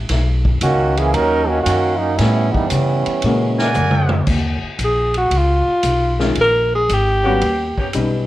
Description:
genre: jazz, big band swing.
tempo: 115 BPM.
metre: 4/4.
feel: swing 68% on 8ths.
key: unclear.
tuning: A4 = 440 Hz.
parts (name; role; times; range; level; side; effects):
upright bass; bass; 0.0-8.3 s; Ab1 to C#3; -19 LUFS; equal; none.
swinging big-band drum kit; drums; 0.1-8.1 s; crash cymbal, hi-hat, kick drum, ride cymbal, snare drum, toms; -23 LUFS; equal; none.
clear trombone section; second line; 0.6-3.7 s; D#3 to A#4; -17 LUFS; right 2 dB; none.
warm grand piano; accompaniment; 3.2-8.3 s; C#3 to A#4; -21 LUFS; left 3 dB; none.
warm trumpet section; stabs; 3.6-4.2 s; A#4 to G#5; -20 LUFS; right 1 dB; none.
breathy alto saxophone; melody; 4.8-7.8 s; F4 to Bb4; -16 LUFS; equal; none.
bright saxophone section; sustained chords; 6.2-7.9 s; Db3 to G4; -28 LUFS; equal; none.
room: light reverb.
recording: worn, warbling old tape, cassette tape, warbly pitch drift.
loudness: -14 LUFS.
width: side -15 dB against mid.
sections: 0.0-4.3 A section; 4.3-8.3 B section.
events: trombone section solo 0.0-4.3; drum fill 3.8-4.3; alto saxophone solo 4.3-8.3.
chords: 0.1 Bmaj9; 2.2 A9; 3.2 A#7alt; 4.3 Ebsus2; 6.4 Bbm7; 7.4 Ebaug7.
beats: | 0.10 0.62 1.14 1.67 | 2.19 2.71 3.24 3.76 | 4.28 4.80 5.33 5.85 | 6.37 6.90 7.42 7.94.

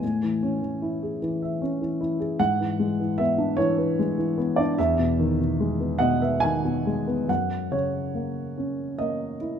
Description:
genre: classical, lyrical solo piano.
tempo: 69-77 BPM.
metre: 3/4.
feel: rubato.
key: E major.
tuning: A4 = 440 Hz.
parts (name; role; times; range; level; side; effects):
dark baby grand piano; solo; 0.0-9.6 s; E2 to G#5; -23 LUFS; equal; none.
room: moderate recital hall reverb, RT60 1.5 s.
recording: minimal, uncompressed stereo recording.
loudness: -22 LUFS.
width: side -8 dB against mid.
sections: 0.0-7.3 A section; 7.3-9.6 B section.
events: grand piano fill 5.6-7.3.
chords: 0.0 Amaj7; 2.4 E7/G#; 4.8 Emaj7; 7.3 F#.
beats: | 0.02 0.82 1.61 | 2.40 3.18 3.98 | 4.78 5.59 6.44 | 7.30 8.14 8.99.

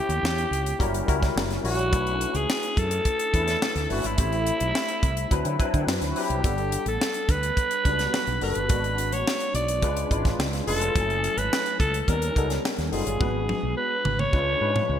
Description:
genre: polished 1980s jazz-funk pop.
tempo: 106 BPM.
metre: 4/4.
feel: straight.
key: F# minor.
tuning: A4 = 441 Hz.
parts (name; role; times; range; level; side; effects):
growling alto saxophone; melody; 0.0-15.0 s; E4 to D5; -27 LUFS; equal; none.
barky tine electric piano; accompaniment; 0.0-15.0 s; F#3 to G#5; -30 LUFS; left 2 dB; overdrive, ensemble chorus.
mellow fretless electric bass; bass; 0.1-15.0 s; E#1 to D3; -28 LUFS; right 1 dB; none.
tight funk drum kit; drums; 0.1-14.9 s; hi-hat, kick drum, snare drum, toms; -27 LUFS; equal; gated reverb.
room: light reverb, studio ambience.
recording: bright 1980s-style digital production.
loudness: -22 LUFS.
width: side -9 dB against mid.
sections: 0.0-15.0 A section.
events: drum fill 13.2-15.0.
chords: 0.0 C#m7b5; 0.8 F#7b9; 1.9 Bm11; 4.2 Am7; 5.3 D13; 6.4 Gmaj9; 8.7 G#m7b5; 9.8 C#7b9; 11.0 F#m9; 12.1 D#7b13; 13.2 G#m7b5; 14.3 C#7b9.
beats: 0.23 0.80 1.36 | 1.93 2.49 3.06 3.62 | 4.18 4.75 5.31 5.88 | 6.44 7.01 7.57 8.13 | 8.70 9.26 9.83 10.39 | 10.95 11.52 12.08 12.64 | 13.21 13.77 14.33 14.89.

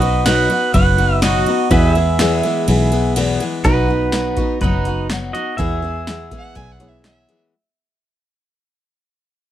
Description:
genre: honky-tonk and classic country.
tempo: 124 BPM.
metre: 4/4.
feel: straight.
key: E major.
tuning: A4 = 440 Hz.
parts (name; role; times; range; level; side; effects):
pedal steel guitar; melody; 0.0-7.2 s; D#4 to F#5; -20 LUFS; right 4 dB; none.
clear upright piano; accompaniment; 0.0-7.5 s; D#4 to C#5; -29 LUFS; right 4 dB; none.
picked steel-string acoustic guitar; accompaniment; 0.0-7.5 s; E2 to G#4; -20 LUFS; left 4 dB; none.
pedal steel guitar; sustained chords; 0.0-3.6 s; F#4 to E5; -27 LUFS; right 2 dB; none.
fingered electric bass; bass; 0.0-7.3 s; F#1 to E2; -18 LUFS; equal; none.
electro analog drum machine; drums; 0.0-7.4 s; hi-hat, kick drum, ride cymbal, snare drum; -22 LUFS; equal; none.
clear fiddle; second line; 6.4-7.4 s; E5 to G#5; -44 LUFS; right 4 dB; none.
room: little or no reverb.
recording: close, detailed microphones.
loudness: -14 LUFS.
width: side -12 dB against mid.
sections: 0.0-3.6 A section; 3.6-7.5 B section.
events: break 2.7-3.6; fade-out 3.6-7.5.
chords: 0.0 B; 1.7 E; 3.6 B; 5.6 E.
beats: 0.26 0.74 1.23 | 1.71 2.19 2.68 3.16 | 3.65 4.13 4.62 5.10 | 5.58 6.07 6.55 7.04.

